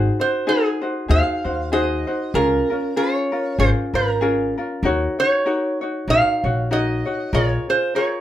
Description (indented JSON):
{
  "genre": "Hawaiian",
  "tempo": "96 BPM",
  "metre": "4/4",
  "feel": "swing 57% on 8ths",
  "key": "Db major",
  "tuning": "A4 = 441 Hz",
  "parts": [
    { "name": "ukulele", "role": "accompaniment", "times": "0.0-8.2 s", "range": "Db4 to Db5", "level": "-22 LUFS", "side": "left 2 dB", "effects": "none" },
    { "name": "upright bass", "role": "bass", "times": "0.0-7.6 s", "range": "Ab1 to Eb2", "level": "-22 LUFS", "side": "equal", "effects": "none" },
    { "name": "lap resonator guitar", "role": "melody", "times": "0.2-8.2 s", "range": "Ab4 to F5", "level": "-21 LUFS", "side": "right 2 dB", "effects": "none" }
  ],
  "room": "wet studio reverb, RT60 0.5 s",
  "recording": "band playing live in one room",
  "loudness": "-18 LUFS",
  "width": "side -12 dB against mid",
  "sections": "0.0-8.2 A section",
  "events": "none",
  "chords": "0.0 Ab7; 2.3 Db6; 4.8 Ebm7; 7.3 Bbm7"
}